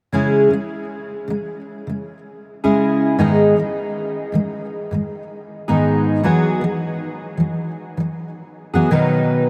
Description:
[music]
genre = pop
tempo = 79 BPM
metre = 4/4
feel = swing 55% on 16ths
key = unclear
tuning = A4 = 439 Hz
[part]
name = fingerpicked steel-string acoustic guitar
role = accompaniment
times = 0.1-9.5 s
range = G#2 to B4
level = -19 LUFS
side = equal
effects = analog chorus
[sound]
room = wet huge ambient reverb, RT60 7.9 s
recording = dreamy mix soaked in reverb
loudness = -19 LUFS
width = mono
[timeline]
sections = 0.1-9.5 A section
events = none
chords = 0.1 C#m; 3.2 G#m; 6.2 Eadd9; 8.9 B

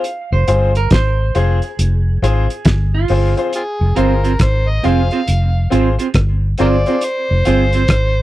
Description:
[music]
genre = roots reggae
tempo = 69 BPM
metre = 4/4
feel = swing 63% on 16ths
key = F dorian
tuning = A4 = 440 Hz
[part]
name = clean electric guitar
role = accompaniment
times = 0.0-7.8 s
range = C4 to F5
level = -20 LUFS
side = right 6 dB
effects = tape echo
[part]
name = cloth-damped thuddy drum kit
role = drums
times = 0.0-8.2 s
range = hi-hat, kick drum, rim click, snare drum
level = -16 LUFS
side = equal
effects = none
[part]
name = vintage muted fingered electric bass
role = bass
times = 0.3-8.2 s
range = F1 to Ab1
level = -15 LUFS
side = equal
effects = none
[part]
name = bright grand piano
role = stabs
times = 0.5-7.7 s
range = C4 to C5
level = -20 LUFS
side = left 6 dB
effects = none
[part]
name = overdriven harmonica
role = melody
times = 3.6-8.2 s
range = C4 to F5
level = -20 LUFS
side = equal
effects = tape echo
[sound]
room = little or no reverb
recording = dry, close 1970s-style studio recording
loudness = -13 LUFS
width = side -16 dB against mid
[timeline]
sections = 0.0-3.5 A section; 3.5-8.2 B section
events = clean electric guitar solo 0.0-3.5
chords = 0.0 Fm

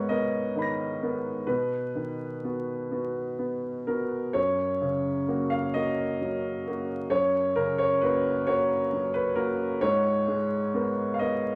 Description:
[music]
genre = neoclassical minimalist piano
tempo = 41-45 BPM (dotted quarters)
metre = 6/8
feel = rubato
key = F# major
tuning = A4 = 441 Hz
[part]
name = clear upright piano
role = solo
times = 0.0-11.6 s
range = F#2 to A#6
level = -28 LUFS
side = equal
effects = none
[sound]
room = moderate large studio reverb, RT60 0.8 s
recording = vinyl crackle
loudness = -28 LUFS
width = mono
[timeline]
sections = 0.0-11.6 A section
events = none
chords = 0.0 G#madd9; 1.5 B; 4.4 F#; 9.8 G#madd9

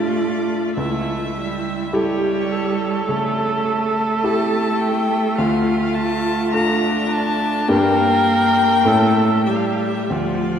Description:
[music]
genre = classical, slow romantic movement for piano quartet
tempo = 52 BPM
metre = 4/4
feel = rubato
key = unclear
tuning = A4 = 440 Hz
[part]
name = clear violin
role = melody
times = 0.0-10.6 s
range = C#5 to Bb5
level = -23 LUFS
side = left 5 dB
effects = none
[part]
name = rich cello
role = second line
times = 0.0-10.6 s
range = F3 to Bb3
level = -22 LUFS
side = right 3 dB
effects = none
[part]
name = clear baby grand piano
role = accompaniment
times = 0.0-10.6 s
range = C#2 to A4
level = -22 LUFS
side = left 1 dB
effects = none
[part]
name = rich viola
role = accompaniment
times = 0.0-10.6 s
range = D4 to Bb4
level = -22 LUFS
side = right 2 dB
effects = none
[sound]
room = wet church reverb, RT60 3.4 s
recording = none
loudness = -16 LUFS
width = side -8 dB against mid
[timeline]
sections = 0.0-10.6 A section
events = none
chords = 0.0 Dm; 0.8 A7/C#; 5.4 Dm; 7.7 Gm; 8.9 A7

